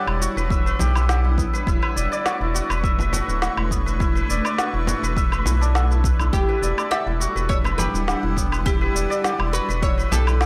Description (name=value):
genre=organic downtempo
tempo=103 BPM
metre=4/4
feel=swing 53% on 16ths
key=E dorian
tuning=A4 = 440 Hz
part: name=granular cloud pad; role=sustained chords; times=0.0-10.5 s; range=G3 to C#6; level=-34 LUFS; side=equal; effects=built-in reverb, sidechain pumping
part: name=santur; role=arpeggios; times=0.0-10.5 s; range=B3 to E5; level=-28 LUFS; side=equal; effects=analog delay
part: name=bronze singing bowl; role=texture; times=0.0-10.5 s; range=C#5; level=-46 LUFS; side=equal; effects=none
part: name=round analog bass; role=bass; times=0.1-10.5 s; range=D1 to B1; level=-24 LUFS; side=equal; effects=none
part: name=electronic woodblock, shaker and snare drum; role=drums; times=0.1-10.5 s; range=none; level=-28 LUFS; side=equal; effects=none
part: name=electronic kick drum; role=drums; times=0.5-9.9 s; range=none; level=-26 LUFS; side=equal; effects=overdrive
part: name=frame drum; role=percussion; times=0.8-10.2 s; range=none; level=-32 LUFS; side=equal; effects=none
part: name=oud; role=melody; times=6.3-10.5 s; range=G4 to E5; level=-30 LUFS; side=equal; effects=analog delay
room=small room ambience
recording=dry, gritty hardware recording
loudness=-21 LUFS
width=mono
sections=0.0-10.5 A section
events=none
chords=0.0 Em9; 1.7 Bm9; 6.3 Em9